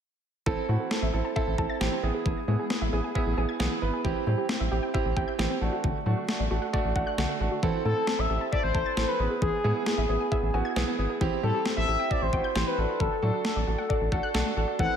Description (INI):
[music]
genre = synth-pop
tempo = 134 BPM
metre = 4/4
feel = straight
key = A dorian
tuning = A4 = 440 Hz
[part]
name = warm concert grand piano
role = accompaniment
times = 0.5-15.0 s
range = A3 to B4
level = -30 LUFS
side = right 5 dB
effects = none
[part]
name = analog pluck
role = arpeggios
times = 0.5-14.9 s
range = D3 to A6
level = -34 LUFS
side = left 3 dB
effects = chorus, ping-pong delay
[part]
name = rubbery square bass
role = bass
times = 0.5-14.9 s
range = G#1 to A2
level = -29 LUFS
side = equal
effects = none
[part]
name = clean 12-bit digital drum machine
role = drums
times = 0.5-14.9 s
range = kick drum, snare drum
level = -31 LUFS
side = left 1 dB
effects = none
[part]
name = expressive synth lead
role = melody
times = 7.8-15.0 s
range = G#4 to F#5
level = -29 LUFS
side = left 2 dB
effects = chorus, ping-pong delay
[sound]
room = wet lush hall reverb, RT60 1.6 s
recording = dreamy mix soaked in reverb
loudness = -25 LUFS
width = side -8 dB against mid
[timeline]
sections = 0.5-7.6 A section; 7.6-15.0 B section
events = none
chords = 0.5 Am; 2.0 E/A; 4.0 C/A; 5.6 D/A; 7.6 Am; 9.2 E/A; 11.2 C/A; 12.8 D/A